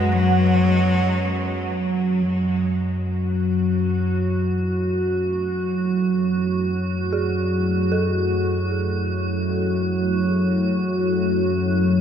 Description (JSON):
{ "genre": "dark ambient drone", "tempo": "free time", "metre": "none", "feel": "none", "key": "F# minor", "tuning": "A4 = 437 Hz", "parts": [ { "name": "bright cello", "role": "melody", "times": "0.0-1.7 s", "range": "F#3 to G#3", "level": "-25 LUFS", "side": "right 1 dB", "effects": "diffuse ambient delay" }, { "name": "sweeping resonant pad", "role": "sustained chords", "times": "0.0-12.0 s", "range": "F#3 to F#5", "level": "-29 LUFS", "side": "equal", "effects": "chorus" }, { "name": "dark detuned synth bell", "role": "arpeggios", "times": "0.0-12.0 s", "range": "D4 to B4", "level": "-32 LUFS", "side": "right 3 dB", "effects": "chorus, diffuse ambient delay" }, { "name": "analog drone", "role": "drone", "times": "0.0-12.0 s", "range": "F#2 to F#3", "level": "-21 LUFS", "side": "left 1 dB", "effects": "chorus" }, { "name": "icy glass pad", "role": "texture", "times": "3.3-12.0 s", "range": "F#4", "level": "-26 LUFS", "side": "right 2 dB", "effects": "chorus, built-in reverb" } ], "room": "moderate huge ambient reverb, RT60 8.7 s", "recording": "none", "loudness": "-19 LUFS", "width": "side -8 dB against mid", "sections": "0.0-2.3 A section; 2.3-12.0 B section", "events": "fade-in on analog synth pad 2.3-12.0", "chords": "0.0 D6/F#; 2.3 F#m", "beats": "free time" }